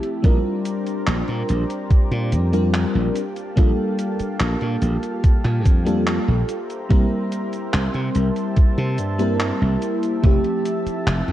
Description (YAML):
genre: vaporwave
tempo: 72 BPM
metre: 4/4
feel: straight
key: G dorian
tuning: A4 = 440 Hz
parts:
  - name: FM electric piano with soft pad layer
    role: accompaniment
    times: 0.0-11.3 s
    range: F3 to Bb4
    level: -23 LUFS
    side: left 1 dB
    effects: wide subtle chorus, tape echo
  - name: lush unison pad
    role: sustained chords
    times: 0.0-11.3 s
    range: Bb3 to Bb5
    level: -31 LUFS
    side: right 1 dB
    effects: chorus
  - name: gated 80s digital drum machine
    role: drums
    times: 0.0-11.3 s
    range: cabasa, handclaps, hi-hat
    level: -29 LUFS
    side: equal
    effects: gated reverb, overdrive
  - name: glassy slap bass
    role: bass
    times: 0.2-11.3 s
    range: F1 to C3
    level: -21 LUFS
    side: equal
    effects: none
  - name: electronic kick drum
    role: drums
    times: 0.2-10.4 s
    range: none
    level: -15 LUFS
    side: equal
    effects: none
room: light reverb, digital ambience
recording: dark, warm production, cassette tape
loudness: -18 LUFS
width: side -13 dB against mid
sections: 0.0-11.3 A section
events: none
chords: 0.2 Bb69; 3.2 Gm9/Bb; 6.5 C7; 10.2 Fmaj9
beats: | 0.24 1.07 1.91 2.74 | 3.57 4.41 5.24 6.07 | 6.91 7.74 8.57 9.40 | 10.24 11.07